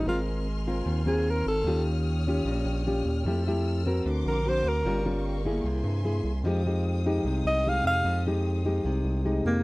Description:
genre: bossa nova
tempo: 150 BPM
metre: 4/4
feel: straight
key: F minor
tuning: A4 = 443 Hz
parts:
  - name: breathy alto saxophone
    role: melody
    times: 0.0-1.8, 4.3-5.1, 7.5-9.6 s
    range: Bb3 to F5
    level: -26 LUFS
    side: equal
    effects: none
  - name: nylon-string guitar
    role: accompaniment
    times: 0.0-9.6 s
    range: Bb2 to Bb4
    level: -29 LUFS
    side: left 1 dB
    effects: none
  - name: warm symphonic string section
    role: sustained chords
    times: 0.0-9.6 s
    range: A4 to F6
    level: -41 LUFS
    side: left 1 dB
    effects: none
  - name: round analog bass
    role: bass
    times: 0.0-9.6 s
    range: G1 to G2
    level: -28 LUFS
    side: equal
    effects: none
room: light reverb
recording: dry, close 1970s-style studio recording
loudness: -25 LUFS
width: side -22 dB against mid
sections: 0.0-9.6 A section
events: alto saxophone solo 0.0-9.6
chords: 0.1 Ab69; 1.7 Eb9; 3.3 Fmaj9; 4.1 Daug7; 4.9 Gm7b5; 5.6 C7b13; 6.4 Fm9

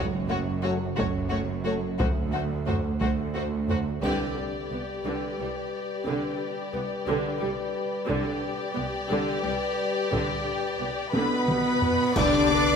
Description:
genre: cinematic, epic orchestral film score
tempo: 59 BPM (dotted quarters)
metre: 6/8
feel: straight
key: unclear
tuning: A4 = 440 Hz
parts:
  - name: warm symphonic violin section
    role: melody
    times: 0.0-12.8 s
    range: C5 to D6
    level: -34 LUFS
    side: left 4 dB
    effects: none
  - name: rich symphonic violin section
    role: second line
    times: 0.0-12.8 s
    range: F#4 to D5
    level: -33 LUFS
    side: left 2 dB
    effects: none
  - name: warm symphonic viola section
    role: accompaniment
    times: 0.0-12.8 s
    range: D3 to B4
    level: -32 LUFS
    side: right 2 dB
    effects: none
  - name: dark symphonic cello section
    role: bass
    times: 0.0-12.8 s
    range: C2 to D3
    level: -32 LUFS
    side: right 4 dB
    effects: none
  - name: warm symphonic double bass section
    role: bass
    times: 0.0-12.8 s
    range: F#1 to D2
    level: -36 LUFS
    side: right 4 dB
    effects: none
  - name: warm French horn section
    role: sustained chords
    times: 0.6-12.8 s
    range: F#3 to C5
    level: -31 LUFS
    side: left 3 dB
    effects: none
  - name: taiko ensemble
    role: drums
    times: 1.0-12.8 s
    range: none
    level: -31 LUFS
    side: equal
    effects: none
  - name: triangle, cymbal swell, clash cymbals and concert bass drum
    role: percussion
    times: 4.0-12.8 s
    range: none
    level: -38 LUFS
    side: equal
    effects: none
  - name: reverse cymbal and sub drop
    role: sound effects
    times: 12.0-12.8 s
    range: none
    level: -42 LUFS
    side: equal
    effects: none
  - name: small flute group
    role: second line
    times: 11.1-12.8 s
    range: B4 to D5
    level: -30 LUFS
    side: left 1 dB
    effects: none
  - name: clear trumpet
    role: stabs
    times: 11.1-12.8 s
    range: B3 to D4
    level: -31 LUFS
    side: right 2 dB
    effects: none
  - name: warm studio string section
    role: sustained chords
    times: 12.2-12.8 s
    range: D4 to D5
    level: -32 LUFS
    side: left 1 dB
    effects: none
  - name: timpani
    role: percussion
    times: 12.2-12.8 s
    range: C3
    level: -34 LUFS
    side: left 2 dB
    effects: none
room: moderate concert hall reverb, RT60 2.1 s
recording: none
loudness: -25 LUFS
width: side -6 dB against mid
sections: 0.0-4.0 A section; 4.0-12.2 B section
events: band accent 4.0-4.7, 12.2-12.8; drum fill 11.1-12.2; impact 12.2-12.8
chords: 0.0 F#m; 2.0 D7; 4.0 G/C

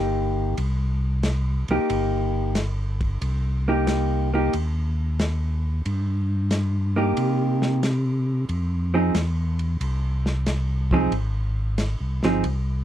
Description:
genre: soul jazz organ trio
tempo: 91 BPM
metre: 4/4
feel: swing 68% on 8ths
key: C minor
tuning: A4 = 440 Hz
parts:
  - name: vintage hollow-body jazz guitar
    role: accompaniment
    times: 0.0-12.4 s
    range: F3 to Ab4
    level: -22 LUFS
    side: right 1 dB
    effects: none
  - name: tonewheel organ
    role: bass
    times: 0.0-12.8 s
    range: G1 to C3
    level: -23 LUFS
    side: equal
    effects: slow rotary speaker
  - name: warm soul drum kit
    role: drums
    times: 0.6-12.7 s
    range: hi-hat, kick drum, ride cymbal, snare drum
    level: -32 LUFS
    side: equal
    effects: none
room: little or no reverb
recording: none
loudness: -21 LUFS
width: side -11 dB against mid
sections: 0.0-12.8 A section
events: none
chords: 0.0 Cm7; 8.5 Fm7

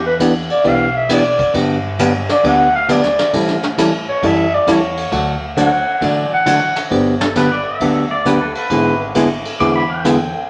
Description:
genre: country, western swing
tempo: 134 BPM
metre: 4/4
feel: swing 67% on 8ths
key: G major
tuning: A4 = 440 Hz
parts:
  - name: growling clarinet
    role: second line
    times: 0.0-6.8 s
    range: B4 to F#5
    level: -18 LUFS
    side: equal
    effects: none
  - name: upright bass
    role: bass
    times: 0.0-10.3 s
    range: G1 to A2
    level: -30 LUFS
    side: equal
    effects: none
  - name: hollow-body jazz guitar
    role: accompaniment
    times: 0.2-10.2 s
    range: D3 to A4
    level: -18 LUFS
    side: equal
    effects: none
  - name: vintage brush drum kit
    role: drums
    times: 0.2-10.2 s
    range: hi-hat, kick drum, ride cymbal, snare drum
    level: -24 LUFS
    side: equal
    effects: none
  - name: pedal steel guitar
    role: second line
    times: 7.2-10.5 s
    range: A4 to D6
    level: -22 LUFS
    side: equal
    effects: none
room: wet studio reverb, RT60 0.7 s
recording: none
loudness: -15 LUFS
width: mono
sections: 0.0-6.9 A section; 6.9-10.5 A section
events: clarinet solo 0.0-6.9; pedal steel guitar solo 6.9-10.5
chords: 0.0 Em7; 1.5 Gmaj7; 3.3 A7; 5.1 D; 6.9 Gmaj7; 8.7 E7/G#

